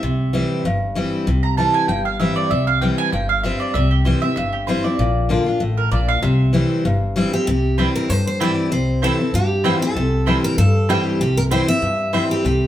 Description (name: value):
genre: bluegrass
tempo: 193 BPM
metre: 4/4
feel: swing 54% on 8ths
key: C mixolydian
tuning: A4 = 438 Hz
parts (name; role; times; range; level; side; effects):
- picked steel-string acoustic guitar; accompaniment; 0.0-12.7 s; G2 to F4; -20 LUFS; left 2 dB; none
- mandolin; stabs; 0.0-12.2 s; C4 to Bb5; -23 LUFS; right 5 dB; none
- upright bass; bass; 0.0-12.7 s; G1 to G2; -21 LUFS; equal; none
- picked steel-string acoustic guitar; melody; 7.3-12.7 s; G4 to E5; -22 LUFS; right 1 dB; none
room: wet large studio reverb, RT60 0.9 s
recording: band playing live in one room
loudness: -16 LUFS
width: side -12 dB against mid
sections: 0.0-7.5 A section; 7.5-12.7 B section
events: mandolin solo 0.0-7.5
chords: 0.0 C; 5.0 Bb; 6.2 C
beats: | 0.03 0.34 0.65 0.96 | 1.27 1.58 1.89 2.20 | 2.51 2.82 3.13 3.44 | 3.75 4.06 4.37 4.68 | 4.99 5.30 5.61 5.92 | 6.23 6.54 6.85 7.16 | 7.47 7.79 8.10 8.41 | 8.72 9.03 9.34 9.65 | 9.96 10.27 10.58 10.89 | 11.20 11.52 11.83 12.14 | 12.45